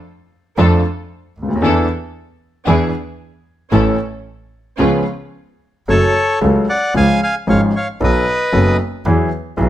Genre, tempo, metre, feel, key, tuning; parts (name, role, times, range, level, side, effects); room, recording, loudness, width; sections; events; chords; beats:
tango; 114 BPM; 4/4; rubato; F# harmonic minor from 5.9 s; A4 = 440 Hz
warm grand piano; accompaniment; 0.6-9.7 s; F#1 to A4; -16 LUFS; left 1 dB
muted studio string section; stabs; 0.6-5.0 s; C#4 to B4; -22 LUFS; right 1 dB
clear double bass; bass; 0.6-9.7 s; F#1 to F2; -18 LUFS; right 2 dB
bandoneon; melody; 5.9-8.8 s; A4 to G#5; -17 LUFS; equal
light reverb; -13 LUFS; side -12 dB against mid
0.0-5.9 A section; 5.9-9.7 B section
0.0 Dm/F; 1.6 E7sus4; 2.7 E7; 3.7 A; 4.8 C#7; 5.9 F#m; 7.0 C#; 8.0 B7; 9.1 Eadd9
0.06 0.58 1.10 | 1.63 2.15 2.67 3.20 | 3.73 4.25 4.79 5.34 | 5.88 6.42 6.95 7.48 | 8.01 8.54 9.06 9.58